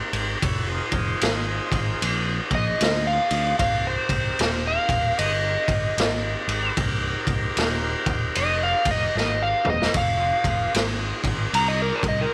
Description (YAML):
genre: blues rock power trio and southern rock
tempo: 76 BPM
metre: 4/4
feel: swing 63% on 8ths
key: C minor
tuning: A4 = 440 Hz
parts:
  - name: overdriven tonewheel organ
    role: sustained chords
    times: 0.0-12.3 s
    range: C4 to Db5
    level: -35 LUFS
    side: equal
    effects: slow rotary speaker
  - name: picked electric bass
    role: bass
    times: 0.1-12.2 s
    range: C1 to D2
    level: -31 LUFS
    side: equal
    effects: none
  - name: raw garage drum kit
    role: drums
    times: 0.1-12.2 s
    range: kick drum, ride cymbal, snare drum, toms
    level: -27 LUFS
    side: equal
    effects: none
  - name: overdriven slide guitar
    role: melody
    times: 2.5-12.3 s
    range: Bb4 to Bb5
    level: -26 LUFS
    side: equal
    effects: none
room: studio reverb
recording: none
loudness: -23 LUFS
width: mono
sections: 0.0-12.3 A section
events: electric slide guitar solo 0.0-12.3; drum fill 9.2-9.9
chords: 0.4 Fm7; 3.6 Cm7; 9.9 Fm7